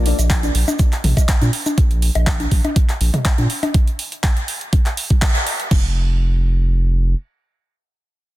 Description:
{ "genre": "progressive house", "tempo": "122 BPM", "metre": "4/4", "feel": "straight", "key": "unclear", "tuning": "A4 = 440 Hz", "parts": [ { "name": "saturated sub bass", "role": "bass", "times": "0.0-7.1 s", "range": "F1 to Bb2", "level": "-17 LUFS", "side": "equal", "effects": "tube saturation, sidechain pumping" }, { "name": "big-room dance drum kit", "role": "drums", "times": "0.1-5.7 s", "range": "handclaps, hi-hat", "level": "-24 LUFS", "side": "right 1 dB", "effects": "none" }, { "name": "electronic bongos, congas and toms", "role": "percussion", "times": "0.2-3.7 s", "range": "none", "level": "-22 LUFS", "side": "left 1 dB", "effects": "sidechain pumping on perc, sidechain pumping on toms" }, { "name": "tube shaker", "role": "percussion", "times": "0.2-1.8 s", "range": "none", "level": "-30 LUFS", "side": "right 4 dB", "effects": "none" }, { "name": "pop drum kit", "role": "drums", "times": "0.3-5.8 s", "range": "crash cymbal, kick drum", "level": "-16 LUFS", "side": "equal", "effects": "overdrive" } ], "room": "digital ambience", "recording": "dense, heavily limited modern master", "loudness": "-15 LUFS", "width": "side -16 dB against mid", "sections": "0.0-5.7 A section; 5.7-8.4 B section", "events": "drop 0.0-5.7; band accent 5.2", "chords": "none", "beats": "0.30 0.79 1.29 | 1.78 2.27 2.76 3.25 | 3.75 4.24 4.73 5.22 | 5.71 6.20 6.70" }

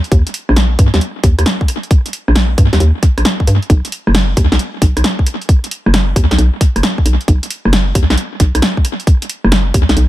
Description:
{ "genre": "UK garage, two-step garage", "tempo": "134 BPM", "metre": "4/4", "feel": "swing 67% on 16ths", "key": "unclear", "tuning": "A4 = 440 Hz", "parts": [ { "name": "punchy analog drum machine", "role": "drums", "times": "0.0-10.1 s", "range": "hi-hat, rim click, snare drum", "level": "-17 LUFS", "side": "equal", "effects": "tape echo" }, { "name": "hollow knocking FM bass", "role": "bass", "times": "0.1-10.1 s", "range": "F#1 to G2", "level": "-12 LUFS", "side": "equal", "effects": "sidechain pumping" }, { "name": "electronic kick drum", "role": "drums", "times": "0.1-9.9 s", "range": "none", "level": "-11 LUFS", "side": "equal", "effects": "none" } ], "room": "little or no reverb", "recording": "echo-heavy mix", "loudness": "-11 LUFS", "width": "side -15 dB against mid", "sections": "0.0-10.1 A section", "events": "none", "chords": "none", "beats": "| 0.12 0.56 1.01 1.46 | 1.91 2.35 2.80 3.25 | 3.70 4.15 4.59 5.04 | 5.49 5.94 6.38 6.83 | 7.28 7.73 8.18 8.62 | 9.07 9.52 9.97" }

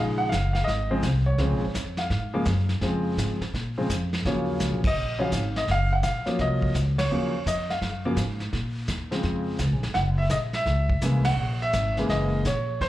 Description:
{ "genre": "jazz piano trio", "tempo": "168 BPM", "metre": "4/4", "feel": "swing 65% on 8ths", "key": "Bb minor", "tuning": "A4 = 443 Hz", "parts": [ { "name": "warm grand piano", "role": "melody", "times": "0.0-12.9 s", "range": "Db3 to Gb5", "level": "-26 LUFS", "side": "equal", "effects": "slapback echo" }, { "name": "upright bass", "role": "bass", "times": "0.0-12.9 s", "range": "Gb1 to Bb2", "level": "-26 LUFS", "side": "equal", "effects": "none" }, { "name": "vintage brush drum kit", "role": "drums", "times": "0.3-12.9 s", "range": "brushed snare drum, crash cymbal, hi-hat, kick drum, ride cymbal, snare drum", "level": "-31 LUFS", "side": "equal", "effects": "none" } ], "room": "studio ambience", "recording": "live gig heard through the venue's PA, club reverb", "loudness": "-23 LUFS", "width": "side -15 dB against mid", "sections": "0.0-12.9 A section", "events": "band accent 4.8, 6.9, 11.2", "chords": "0.0 Bbm7; 4.2 Ebm7; 8.5 Bbm7; 10.0 Gb7", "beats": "0.33 0.68 1.04 | 1.40 1.75 2.11 2.47 | 2.82 3.18 3.54 3.89 | 4.25 4.61 4.96 5.32 | 5.67 6.03 6.39 6.75 | 7.10 7.46 7.82 8.17 | 8.53 8.89 9.24 9.60 | 9.96 10.31 10.67 11.03 | 11.39 11.74 12.10 12.46 | 12.81" }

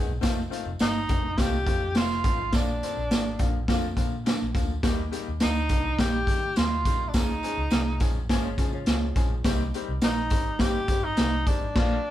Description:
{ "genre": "uptempo 1960s-style soul", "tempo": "104 BPM", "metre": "4/4", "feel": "straight", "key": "unclear", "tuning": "A4 = 440 Hz", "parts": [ { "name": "bright grand piano", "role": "accompaniment", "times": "0.0-12.0 s", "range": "D3 to Bb4", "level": "-34 LUFS", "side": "left 6 dB", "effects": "none" }, { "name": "archtop guitar, miked and amplified", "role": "riff", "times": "0.0-0.1, 8.4-12.0 s", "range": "Db4 to Ab4", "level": "-38 LUFS", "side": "left 5 dB", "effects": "none" }, { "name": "vintage muted fingered electric bass", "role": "bass", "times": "0.0-12.0 s", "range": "F1 to Eb3", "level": "-32 LUFS", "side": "equal", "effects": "none" }, { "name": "raw garage drum kit", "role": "drums", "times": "0.2-11.9 s", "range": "crash cymbal, hi-hat, kick drum, snare drum", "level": "-25 LUFS", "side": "equal", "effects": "none" }, { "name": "tambourine", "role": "percussion", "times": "0.2-11.6 s", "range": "none", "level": "-43 LUFS", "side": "right 4 dB", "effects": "none" }, { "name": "clear tenor saxophone", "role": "melody", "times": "0.8-12.1 s", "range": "D4 to G4", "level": "-29 LUFS", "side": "equal", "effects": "none" } ], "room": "light reverb", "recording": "band playing live in one room", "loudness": "-23 LUFS", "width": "side -13 dB against mid", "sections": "0.0-12.1 A section", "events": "band accent 11.8-12.1", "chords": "0.2 F7; 2.5 Bb; 4.8 Eb; 7.1 Db; 9.5 Cm", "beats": "| 0.23 0.81 1.38 1.96 | 2.53 3.11 3.69 4.26 | 4.84 5.42 5.99 6.57 | 7.15 7.72 8.30 8.88 | 9.45 10.03 10.61 11.18 | 11.76" }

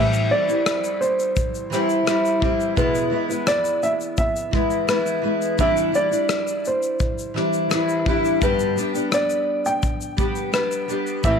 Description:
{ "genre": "acoustic pop", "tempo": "85 BPM", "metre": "4/4", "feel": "straight", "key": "unclear", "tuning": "A4 = 440 Hz", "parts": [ { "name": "dark upright piano", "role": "melody", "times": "0.0-11.4 s", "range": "B4 to G5", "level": "-23 LUFS", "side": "right 1 dB", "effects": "none" }, { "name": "fingerpicked steel-string acoustic guitar", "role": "accompaniment", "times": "0.0-11.4 s", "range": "E2 to G4", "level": "-22 LUFS", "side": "left 1 dB", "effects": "double-tracked left and right" }, { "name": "modern studio drum kit", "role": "drums", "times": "0.1-11.4 s", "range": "kick drum, rim click, shaker", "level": "-25 LUFS", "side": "left 2 dB", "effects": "none" } ], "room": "wet spring reverb, RT60 2.2 s", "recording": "1960s-style stereo", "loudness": "-19 LUFS", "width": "side -6 dB against mid", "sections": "0.0-11.4 A section", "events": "none", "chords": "0.0 Am7 (rootless); 2.8 E; 5.6 Cadd9; 8.4 G", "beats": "0.66 1.36 2.07 | 2.77 3.48 4.18 4.89 | 5.59 6.30 7.00 7.71 | 8.41 9.12 9.83 10.53 | 11.24" }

